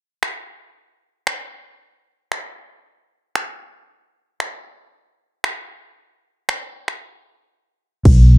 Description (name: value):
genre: dance-pop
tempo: 115 BPM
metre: 4/4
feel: straight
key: unclear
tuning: A4 = 440 Hz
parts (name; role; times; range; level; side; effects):
- pop drum kit; drums; 0.2-8.2 s; crash cymbal, finger snaps, kick drum; -18 LUFS; equal; none
- vintage muted fingered electric bass; bass; 8.1-8.4 s; B1; -8 LUFS; equal; sidechain pumping
room: digital ambience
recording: dark, warm production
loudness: -20 LUFS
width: side -20 dB against mid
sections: 0.0-8.1 A section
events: drums muted 7.5-8.1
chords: none